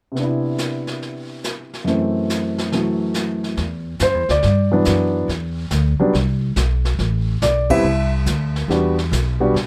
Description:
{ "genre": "jazz piano trio", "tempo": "141 BPM", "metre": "4/4", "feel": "swing 67% on 8ths", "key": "E minor", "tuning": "A4 = 441 Hz", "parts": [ { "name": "warm grand piano", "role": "melody", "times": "0.1-9.5 s", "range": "F#2 to E5", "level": "-21 LUFS", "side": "equal", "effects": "none" }, { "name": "jazz brush drum kit", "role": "drums", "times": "0.2-9.7 s", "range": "brushed snare drum, hi-hat, kick drum, ride cymbal, snare drum", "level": "-30 LUFS", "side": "equal", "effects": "none" }, { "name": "upright bass", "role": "bass", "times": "3.6-9.7 s", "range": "A1 to B2", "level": "-22 LUFS", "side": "equal", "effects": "none" } ], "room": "light reverb", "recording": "none", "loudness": "-20 LUFS", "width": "mono", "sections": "0.2-3.6 A section; 3.6-9.7 B section", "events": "band accent 7.6", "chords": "0.2 Cmaj9; 1.9 F#m7b5; 3.6 Em7; 7.0 Am; 8.7 Em7", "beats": "| 0.16 0.59 1.02 1.44 | 1.87 2.30 2.73 3.15 | 3.58 4.01 4.43 4.86 | 5.29 5.71 6.14 6.57 | 6.99 7.42 7.85 8.27 | 8.70 9.13 9.55" }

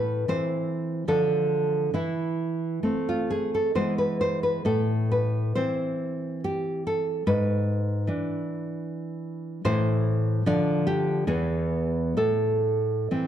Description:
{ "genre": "romantic piece for solo classical guitar", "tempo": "63-78 BPM", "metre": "3/4", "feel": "rubato", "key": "A minor", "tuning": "A4 = 440 Hz", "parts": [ { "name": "nylon-string guitar", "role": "solo", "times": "0.0-13.3 s", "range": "E2 to D5", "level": "-24 LUFS", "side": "equal", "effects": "none" } ], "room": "wet recital hall reverb, RT60 1.4 s", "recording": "dark, warm production", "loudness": "-24 LUFS", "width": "side -10 dB against mid", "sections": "0.0-13.3 A section", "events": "none", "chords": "0.0 Am; 1.1 Dm; 1.9 Am/E; 3.8 E; 4.7 Am; 7.3 E7/G#; 9.7 Am; 10.5 Dm; 11.3 E; 12.2 Am", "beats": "0.28 1.08 | 1.94 2.84 3.75 | 4.66 5.56 6.43 | 7.26 8.07 8.86 | 9.65 10.45 11.27 | 12.17 13.12" }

